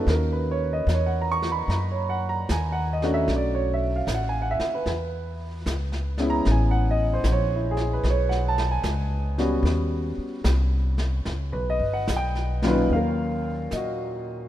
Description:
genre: jazz ballad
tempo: 75 BPM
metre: 4/4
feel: swing 66% on 8ths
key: unclear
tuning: A4 = 440 Hz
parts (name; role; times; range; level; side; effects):
- warm baby grand piano; accompaniment; 0.0-14.5 s; D#2 to C#6; -26 LUFS; right 1 dB; none
- upright bass; bass; 0.0-14.5 s; G1 to Bb2; -25 LUFS; equal; none
- vintage brush drum kit; drums; 0.1-14.5 s; brushed snare drum, hi-hat, snare drum; -34 LUFS; equal; none
room: light reverb, small room ambience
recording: rough home demo mix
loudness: -22 LUFS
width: side -12 dB against mid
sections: 0.0-12.9 A section; 12.9-14.5 B section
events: none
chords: 0.1 D#m7; 3.3 Bm9; 4.9 E6; 6.5 Amaj9; 9.6 D#7alt; 12.9 Ebm9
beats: | 0.08 0.89 1.70 2.50 | 3.30 4.08 4.87 5.66 | 6.45 7.25 8.04 8.84 | 9.64 10.45 11.25 12.08 | 12.90 13.71

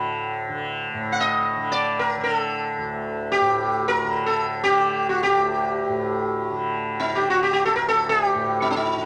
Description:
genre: indian classical, Hindustani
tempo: free time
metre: none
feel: none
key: unclear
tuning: A4 = 438 Hz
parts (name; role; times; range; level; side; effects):
- tanpura; drone; 0.0-9.1 s; D2 to D3; -28 LUFS; equal; none
- sitar; melody; 1.1-9.1 s; D4 to F#5; -23 LUFS; equal; none
room: moderate club reverb, RT60 0.9 s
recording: none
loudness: -23 LUFS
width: mono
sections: 0.9-9.1 A section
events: none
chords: none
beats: free time

